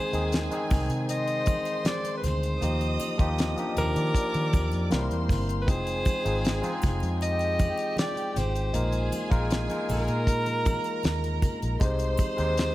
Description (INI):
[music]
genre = lush 1970s-style soul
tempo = 78 BPM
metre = 4/4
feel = straight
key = Eb major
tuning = A4 = 440 Hz
[part]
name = edgy alto saxophone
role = melody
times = 0.0-12.7 s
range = Bb4 to Eb5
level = -31 LUFS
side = equal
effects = none
[part]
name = rich chamber violin section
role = second line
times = 0.0-12.7 s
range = G4 to Eb6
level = -35 LUFS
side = equal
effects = none
[part]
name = overdriven tine electric piano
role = accompaniment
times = 0.0-12.7 s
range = Eb3 to C5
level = -31 LUFS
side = left 1 dB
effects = none
[part]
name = vintage muted fingered electric bass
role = bass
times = 0.1-12.7 s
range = F1 to Eb3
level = -29 LUFS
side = equal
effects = none
[part]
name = damped 70s drum kit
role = drums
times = 0.1-12.7 s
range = hi-hat, kick drum, snare drum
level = -27 LUFS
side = equal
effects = none
[part]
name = triangle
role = percussion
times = 0.1-12.7 s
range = none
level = -50 LUFS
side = left 4 dB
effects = none
[part]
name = congas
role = percussion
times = 0.3-12.7 s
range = none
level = -40 LUFS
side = right 3 dB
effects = none
[sound]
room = small room ambience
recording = none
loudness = -24 LUFS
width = side -16 dB against mid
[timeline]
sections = 0.0-12.7 A section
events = none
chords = 0.0 Ab/C; 2.6 Ebmaj9; 4.9 C7; 5.7 Fm9; 8.7 Bb7sus4; 11.8 Abmaj7/C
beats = 0.32 1.09 1.85 | 2.62 3.38 4.15 4.92 | 5.68 6.45 7.21 7.98 | 8.74 9.51 10.28 11.04 | 11.81 12.58